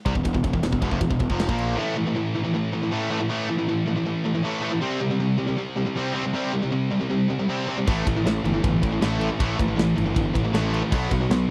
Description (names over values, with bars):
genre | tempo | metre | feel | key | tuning
heavy metal | 158 BPM | 4/4 | straight | unclear | A4 = 441 Hz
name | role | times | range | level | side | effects
distorted electric guitar | riff | 0.1-11.5 s | E2 to C4 | -28 LUFS | equal | overdrive
heavy high-gain guitar | riff | 0.1-11.5 s | E2 to C4 | -30 LUFS | equal | distortion
fuzz picked electric bass | bass | 0.1-1.8, 7.9-11.4 s | E1 to C2 | -28 LUFS | equal | overdrive
tight metal drum kit | drums | 0.1-1.7, 7.9-11.4 s | crash cymbal, kick drum, ride cymbal, snare drum | -28 LUFS | equal | none
scooped high-gain guitar | riff | 1.8-11.5 s | A2 to C4 | -35 LUFS | equal | distortion
room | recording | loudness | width
little or no reverb | dry, close 1970s-style studio recording | -24 LUFS | mono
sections
0.0-1.8 A section; 1.8-11.5 B section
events
none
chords
0.0 E5; 1.8 A5; 4.8 C5; 7.9 A5; 10.9 B5